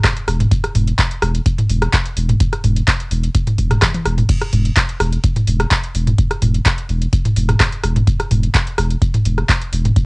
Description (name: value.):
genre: acid house.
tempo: 127 BPM.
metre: 4/4.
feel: straight.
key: unclear.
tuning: A4 = 439 Hz.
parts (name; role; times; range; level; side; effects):
booming analog drum machine; drums; 0.0-10.1 s; crash cymbal, handclaps, hi-hat, rim click, toms; -17 LUFS; equal; cassette tape.
electronic kick drum; drums; 0.0-10.1 s; none; -16 LUFS; equal; cassette tape.
saturated sub bass; bass; 0.3-9.9 s; E1; -17 LUFS; equal; sidechain pumping.
room: little or no reverb.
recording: home recording on cassette, nothing above 10.8 kHz.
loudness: -14 LUFS.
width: side -32 dB against mid.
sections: 0.0-10.1 A section.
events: drum fill 3.8-4.3.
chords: none.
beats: 0.04 | 0.51 0.99 1.46 1.93 | 2.40 2.88 3.35 3.82 | 4.29 4.77 5.24 5.71 | 6.18 6.66 7.13 7.60 | 8.07 8.54 9.02 9.49 | 9.96.